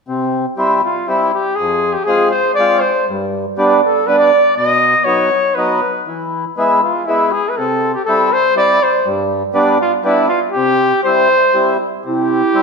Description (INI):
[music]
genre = alpine folk, alpine dance band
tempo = 120 BPM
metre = 3/4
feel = straight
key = C major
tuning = A4 = 438 Hz
[part]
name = mellow accordion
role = accompaniment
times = 0.1-12.6 s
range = F2 to F4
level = -15 LUFS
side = right 1 dB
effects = none
[part]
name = warm trumpet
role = melody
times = 0.8-12.6 s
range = E4 to D#5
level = -14 LUFS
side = left 1 dB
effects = none
[part]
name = warm clarinet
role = second line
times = 12.1-12.6 s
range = E4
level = -15 LUFS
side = right 6 dB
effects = none
[sound]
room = wet recital hall reverb, RT60 1.4 s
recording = none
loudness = -12 LUFS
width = side -4 dB against mid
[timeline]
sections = 0.1-12.0 A section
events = none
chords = 0.1 C; 1.6 Fm; 3.1 G; 4.6 B; 6.1 E; 7.6 C; 9.1 G; 10.5 C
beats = | 0.08 0.58 1.09 | 1.59 2.08 2.58 | 3.08 3.58 4.08 | 4.57 5.07 5.57 | 6.08 6.58 7.08 | 7.57 8.07 8.57 | 9.06 9.56 10.05 | 10.55 11.04 11.54 | 12.04 12.54